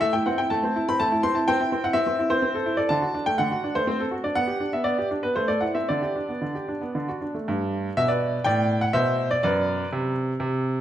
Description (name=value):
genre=classical-period piano sonatina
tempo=123 BPM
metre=3/4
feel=rubato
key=G major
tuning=A4 = 440 Hz
part: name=bright baby grand piano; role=solo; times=0.0-10.8 s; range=F#2 to C6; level=-22 LUFS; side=equal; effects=none
room=wet recital hall reverb, RT60 1.4 s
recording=none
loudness=-22 LUFS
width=side -11 dB against mid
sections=0.0-7.5 A section; 7.5-10.8 B section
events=none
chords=0.0 Am; 1.5 C; 2.4 Am/C; 2.9 D; 3.9 D7/C; 4.4 G/B; 5.4 Am; 5.9 G/D; 6.9 D; 7.5 G; 8.9 Bm; 9.9 N.C.